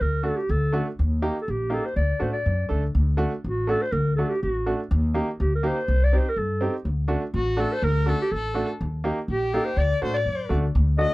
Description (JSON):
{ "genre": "klezmer", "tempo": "123 BPM", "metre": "2/4", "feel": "straight", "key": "D phrygian dominant", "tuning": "A4 = 435 Hz", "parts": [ { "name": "growling clarinet", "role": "melody", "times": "0.0-11.1 s", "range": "F#4 to Eb5", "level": "-26 LUFS", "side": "equal", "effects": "none" }, { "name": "upright bass", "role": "bass", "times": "0.0-11.0 s", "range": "A1 to A2", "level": "-23 LUFS", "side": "equal", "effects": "none" }, { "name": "bright upright piano", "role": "accompaniment", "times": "0.2-11.1 s", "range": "A3 to A4", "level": "-28 LUFS", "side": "right 2 dB", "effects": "none" }, { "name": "rich violin", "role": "second line", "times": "7.4-11.1 s", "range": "F#4 to Eb5", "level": "-33 LUFS", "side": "left 4 dB", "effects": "none" } ], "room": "little or no reverb", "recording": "dry, close 1970s-style studio recording", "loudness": "-22 LUFS", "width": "side -20 dB against mid", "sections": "0.0-3.0 A section; 3.0-10.8 A section", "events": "none", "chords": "0.0 D; 1.0 Eb; 2.0 D; 4.9 Eb; 5.9 Cm; 6.9 D; 8.8 Eb; 9.8 D" }